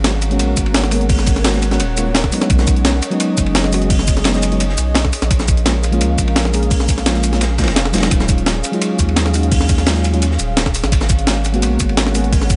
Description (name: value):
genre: liquid drum and bass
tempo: 171 BPM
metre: 4/4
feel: straight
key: Eb minor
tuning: A4 = 440 Hz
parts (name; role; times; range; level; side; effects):
- mellow FM electric piano; accompaniment; 0.0-12.6 s; F3 to Ab4; -22 LUFS; equal; chorus, vintage 12-bit sampler grit
- glassy FM pad; sustained chords; 0.0-12.6 s; Gb3 to Gb5; -28 LUFS; equal; ensemble chorus, built-in reverb, sidechain pumping
- saturated sub bass; bass; 0.0-12.6 s; Eb1 to Eb2; -20 LUFS; equal; none
- crunchy breakbeat drum kit; drums; 0.0-12.6 s; hi-hat, ride cymbal, snare drum; -27 LUFS; equal; high-pass filter on cymbals, high-pass filter on hats, high-pass filter on snare, high-pass filter on room
- jungle sampler-style drum kit; drums; 0.0-12.6 s; hi-hat, shaker, snare drum; -22 LUFS; equal; none
- electronic kick drum; drums; 0.6-12.6 s; none; -19 LUFS; equal; overdrive
room: little or no reverb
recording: nothing above 10.8 kHz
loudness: -16 LUFS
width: mono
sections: 0.0-12.6 A section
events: kick drops out 7.8-8.1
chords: 0.0 Abm11; 2.5 B69; 5.1 Bbm7; 8.1 Ebm11; 10.9 Abm11